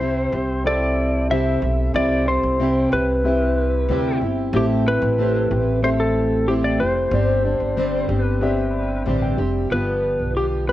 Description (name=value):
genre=acoustic pop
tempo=93 BPM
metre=4/4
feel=straight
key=C major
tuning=A4 = 440 Hz
part: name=clean lap steel guitar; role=melody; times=0.0-10.7 s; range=G4 to E5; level=-22 LUFS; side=left 1 dB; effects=none
part: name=dark upright piano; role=accompaniment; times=0.0-9.7 s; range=C4 to G5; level=-29 LUFS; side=left 2 dB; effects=cassette tape
part: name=fingerpicked plugged-in steel-string acoustic guitar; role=accompaniment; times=0.0-10.7 s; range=G2 to G4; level=-22 LUFS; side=equal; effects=double-tracked left and right, cassette tape
part: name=upright bass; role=bass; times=0.0-10.7 s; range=F1 to D2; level=-23 LUFS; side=equal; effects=none
room=moderate spring reverb, RT60 1.1 s, small room ambience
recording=home recording on cassette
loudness=-18 LUFS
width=side -14 dB against mid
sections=0.0-9.7 A section; 9.7-10.7 B section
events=upright piano fill 8.7-9.7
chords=0.0 C; 4.5 Am7; 7.1 Gsus4; 9.7 G7